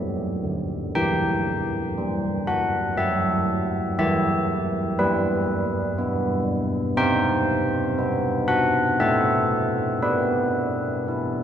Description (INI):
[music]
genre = classical, tune for church bells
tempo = 59 BPM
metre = 3/4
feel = straight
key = E minor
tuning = A4 = 439 Hz
[part]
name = carillon bells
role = solo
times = 0.0-11.4 s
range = D3 to G5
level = -21 LUFS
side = equal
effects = none
[sound]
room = wet cathedral reverb, RT60 4.7 s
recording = dark, warm production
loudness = -21 LUFS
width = side -9 dB against mid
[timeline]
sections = 1.0-11.4 A section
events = none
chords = 0.0 Em; 7.0 C5; 9.0 Am; 10.0 Em/B